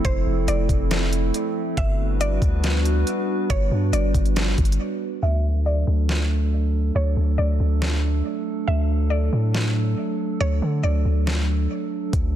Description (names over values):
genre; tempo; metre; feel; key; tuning
hip hop, atmospheric cloud-rap; 139 BPM; 4/4; half-time; D major; A4 = 440 Hz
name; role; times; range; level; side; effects
mallet-like synth pluck; melody; 0.0-12.1 s; C5 to E5; -31 LUFS; right 1 dB; chorus, low-pass filter, ping-pong delay
warbly tape-like pad; sustained chords; 0.0-12.4 s; F3 to B4; -26 LUFS; right 2 dB; chorus, built-in reverb, sidechain pumping, low-pass filter
long sustained 808-style bass; bass; 0.0-12.4 s; F1 to D3; -21 LUFS; equal; none
smooth R&B drum kit; drums; 0.0-12.2 s; hi-hat, kick drum, snare drum; -24 LUFS; equal; none
room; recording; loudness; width
little or no reverb; dense, heavily limited modern master; -20 LUFS; side -11 dB against mid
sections
0.0-5.2 A section; 5.2-12.1 B section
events
break 4.8-5.2, 11.7-12.1; filter sweep 5.2-12.1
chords
0.0 Fmaj7; 1.8 Gmaj7; 5.2 D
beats
| 0.05 0.48 0.91 1.34 | 1.77 2.21 2.64 3.07 | 3.50 3.93 4.36 4.79 | 5.23 5.66 6.09 6.52 | 6.95 7.38 7.82 8.25 | 8.68 9.11 9.54 9.97 | 10.41 10.84 11.27 11.70 | 12.13